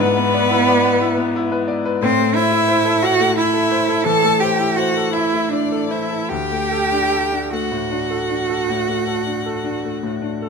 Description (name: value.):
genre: classical, slow romantic movement for piano trio.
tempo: 49-60 BPM (dotted quarters).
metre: 12/8.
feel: rubato.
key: unclear.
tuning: A4 = 442 Hz.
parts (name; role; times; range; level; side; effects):
rich violin; melody; 0.0-10.5 s; B4 to A5; -24 LUFS; left 10 dB; none.
rich cello; second line; 0.0-10.5 s; B3 to A4; -19 LUFS; right 5 dB; none.
bright grand piano; accompaniment; 0.0-10.5 s; D2 to D5; -20 LUFS; left 4 dB; none.
room: light reverb.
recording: close, detailed microphones.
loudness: -16 LUFS.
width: side -5 dB against mid.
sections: 0.0-10.5 A section.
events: none.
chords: 0.0 E7/G#; 2.0 Am; 6.3 D.